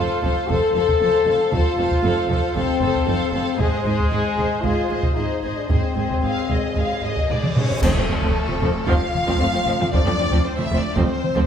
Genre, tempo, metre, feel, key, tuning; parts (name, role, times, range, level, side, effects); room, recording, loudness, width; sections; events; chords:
cinematic, epic orchestral film score; 115 BPM; 4/4; straight; A4 = 441 Hz
warm symphonic violin section; melody; 0.0-11.5 s; A4 to F5; -28 LUFS; left 4 dB
warm symphonic violin section; second line; 0.0-11.4 s; C4 to F5; -28 LUFS; left 3 dB
clear studio viola section; accompaniment; 0.0-11.4 s; F3 to A4; -28 LUFS; right 2 dB
warm French horn section; sustained chords; 0.0-11.5 s; Ab3 to A4; -23 LUFS; left 4 dB
rich studio double bass section; bass; 0.0-11.0 s; F1 to Ab1; -29 LUFS; right 3 dB
warm symphonic cello section; bass; 0.0-11.4 s; F2 to Ab2; -28 LUFS; right 4 dB
taiko ensemble; drums; 0.2-11.5 s; -23 LUFS; right 1 dB
cymbal swell, clash cymbals and concert bass drum; percussion; 3.6-8.8 s; -30 LUFS; equal
reverse cymbal and impact; sound effects; 7.2-9.9 s; -35 LUFS; right 1 dB
timpani; percussion; 7.8-8.6 s; F2; -33 LUFS; right 1 dB
wet recital hall reverb, RT60 1.5 s; recorded in a church or concert hall; -18 LUFS; side -8 dB against mid
0.0-7.8 A section; 7.8-11.5 B section
reverse cymbal 7.2-7.8; drum fill 7.3-7.8; band accent 7.8-8.3; impact 7.8-9.9
0.0 F; 3.6 Ab; 7.8 F